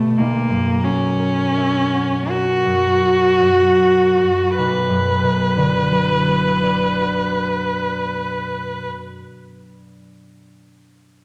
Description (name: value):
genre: classical, romantic duo for cello and harp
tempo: 23-34 BPM (dotted quarters)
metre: 6/8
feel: rubato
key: B minor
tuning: A4 = 441 Hz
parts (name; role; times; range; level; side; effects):
- rich cello; melody; 0.0-8.9 s; A3 to B4; -19 LUFS; equal; none
- concert harp; accompaniment; 0.0-9.9 s; B1 to G5; -24 LUFS; equal; none
room: wet scoring stage reverb, RT60 1.7 s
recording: none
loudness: -18 LUFS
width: mono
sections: 0.0-4.6 A section; 4.6-8.5 B section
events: slowing down 0.0-4.6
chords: 0.2 F#7/B; 4.6 Bm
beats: | 0.18 2.30 | 4.59 6.53